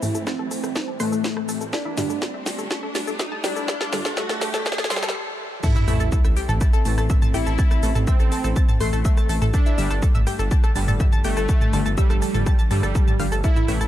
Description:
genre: melodic techno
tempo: 123 BPM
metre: 4/4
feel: straight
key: unclear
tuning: A4 = 438 Hz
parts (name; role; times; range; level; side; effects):
- analog synth brass; melody; 0.0-13.9 s; G3 to E4; -29 LUFS; right 1 dB; chorus, sidechain pumping, ping-pong delay
- dark detuned synth bell; second line; 0.0-13.9 s; G4 to E5; -36 LUFS; left 3 dB; chorus, phaser, tremolo, sidechain pumping, low-pass filter, ping-pong delay
- warm symphonic string section; sustained chords; 0.0-13.9 s; C3 to D4; -35 LUFS; right 2 dB; sidechain pumping, low-pass filter
- analog pluck; arpeggios; 0.0-13.8 s; E4 to A6; -30 LUFS; left 1 dB; chorus, cassette tape, sidechain pumping, ping-pong delay
- synth brass stab; stabs; 0.0-13.8 s; G2 to A3; -31 LUFS; left 2 dB; chorus, sidechain pumping, ping-pong delay
- dark detuned saw bass; bass; 0.0-13.9 s; G1 to G2; -26 LUFS; equal; sidechain pumping, high-pass filter
- techno drum kit; drums; 0.0-13.9 s; crash cymbal, hi-hat, rim click, shaker, snare drum, toms; -28 LUFS; right 1 dB; overdrive
- riser and sub drop; sound effects; 0.5-7.6 s; none; -30 LUFS; equal; none
- electronic kick drum; drums; 0.3-13.5 s; none; -19 LUFS; equal; overdrive, high-pass filter on kick
room: little or no reverb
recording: dark, warm production, high-pass filter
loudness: -19 LUFS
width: side -13 dB against mid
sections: 0.0-5.6 A section; 5.6-13.9 B section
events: build-up 0.0-5.6; drum fill 0.0-5.1; riser 0.5-5.1; filter sweep on analog polysynth 0.0-5.6; filter sweep on synth bell 0.0-5.6; filter sweep on synth stab 0.0-5.6; filter sweep on string section 0.0-5.6; filter sweep 0.0-5.6; stop 5.1-5.6; drop 5.6-13.9; impact 5.6-7.6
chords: 0.0 Am; 1.7 Gsus2; 5.6 Am; 9.5 Gsus2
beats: 0.27 0.76 1.24 | 1.73 2.22 2.71 3.19 | 3.68 4.17 4.66 5.15 | 5.63 6.12 6.61 7.10 | 7.58 8.07 8.56 9.05 | 9.54 10.02 10.51 11.00 | 11.49 11.98 12.46 12.95 | 13.44

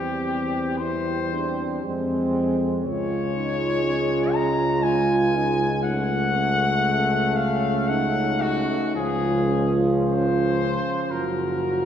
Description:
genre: classical, hymn-like piece for brass band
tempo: 50-61 BPM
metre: 3/4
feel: rubato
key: Db major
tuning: A4 = 439 Hz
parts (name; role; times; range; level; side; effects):
- mellow cornet; melody; 0.0-11.9 s; Gb4 to Bb5; -26 LUFS; left 3 dB; none
- warm French horn section; second line; 0.0-11.9 s; C4 to F4; -28 LUFS; right 4 dB; none
- mellow trombone; accompaniment; 0.0-11.9 s; F3 to A3; -29 LUFS; right 2 dB; none
- warm euphonium; accompaniment; 0.0-11.9 s; A3 to Gb4; -27 LUFS; equal; none
- mellow tuba; bass; 0.0-11.9 s; Gb1 to F2; -26 LUFS; equal; none
room: wet church reverb, RT60 2.6 s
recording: heard from further back in the room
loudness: -20 LUFS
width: side -9 dB against mid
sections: 0.0-11.9 A section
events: none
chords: 0.0 C/E; 1.8 Fm; 2.9 Db; 5.9 Gbm/Db; 9.0 Db; 11.1 Gbmaj7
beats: 0.80 1.85 | 2.86 3.86 4.86 | 5.86 6.88 7.90 | 8.96 10.00 11.11

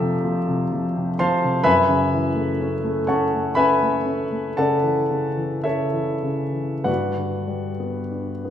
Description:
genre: classical, impressionist solo piano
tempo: 47-64 BPM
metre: 5/4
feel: rubato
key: unclear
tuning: A4 = 442 Hz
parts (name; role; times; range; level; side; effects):
- warm concert grand piano; solo; 0.0-8.5 s; F2 to E6; -19 LUFS; left 1 dB; none
room: wet recital hall reverb, RT60 1.4 s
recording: heard from further back in the room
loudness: -19 LUFS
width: side -10 dB against mid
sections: 0.0-8.5 A section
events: none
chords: 0.0 Gm11/F; 1.7 F#m7; 6.9 Gmaj7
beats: 0.71 | 1.65 2.61 3.59 4.59 5.68 | 6.88 8.14

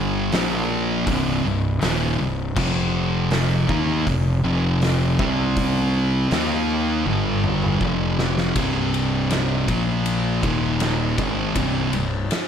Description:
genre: stoner and doom metal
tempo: 80 BPM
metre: 4/4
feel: straight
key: C minor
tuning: A4 = 440 Hz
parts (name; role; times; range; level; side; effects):
- thick fuzz guitar; riff; 0.0-12.2 s; C2 to Eb4; -24 LUFS; left 8 dB; distortion
- thick fuzz guitar; riff; 0.0-12.2 s; C2 to Eb4; -23 LUFS; right 6 dB; distortion
- fuzz fingered electric bass; bass; 0.0-12.3 s; C1 to Eb2; -27 LUFS; equal; overdrive
- oversized low-tuned drum kit; drums; 0.3-12.5 s; crash cymbal, hi-hat, kick drum, ride cymbal, snare drum, toms; -26 LUFS; equal; none
room: light reverb, small room ambience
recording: none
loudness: -19 LUFS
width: side -8 dB against mid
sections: 0.0-8.6 A section; 8.6-12.5 B section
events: drum fill 7.1-8.6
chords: 0.3 Bb5; 1.1 Cm; 2.6 F5; 5.2 C5; 6.3 Eb5; 7.1 G5; 7.8 F5; 8.6 C5; 9.7 Bb5; 10.4 Eb5; 11.2 Cm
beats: 0.34 1.08 1.83 | 2.58 3.33 4.07 4.82 | 5.57 6.32 7.06 7.81 | 8.56 9.31 10.06 10.81 | 11.56 12.31

